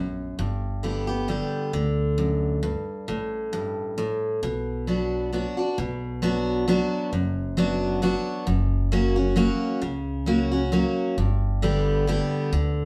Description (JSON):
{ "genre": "bluegrass", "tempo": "134 BPM", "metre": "3/4", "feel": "swing 55% on 8ths", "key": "B minor", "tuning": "A4 = 438 Hz", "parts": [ { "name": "picked steel-string acoustic guitar", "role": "accompaniment", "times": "0.0-12.8 s", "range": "F#2 to G4", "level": "-26 LUFS", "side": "equal", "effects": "none" }, { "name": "upright bass", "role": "bass", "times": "0.0-12.8 s", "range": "F#1 to D2", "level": "-30 LUFS", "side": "equal", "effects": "none" } ], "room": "wet studio reverb, RT60 0.7 s", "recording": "band playing live in one room", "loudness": "-25 LUFS", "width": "mono", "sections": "0.0-5.8 A section; 5.8-12.8 A section", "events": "none", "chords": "0.4 G; 3.1 Gsus2/A; 4.4 Bm; 8.5 F#; 11.2 G" }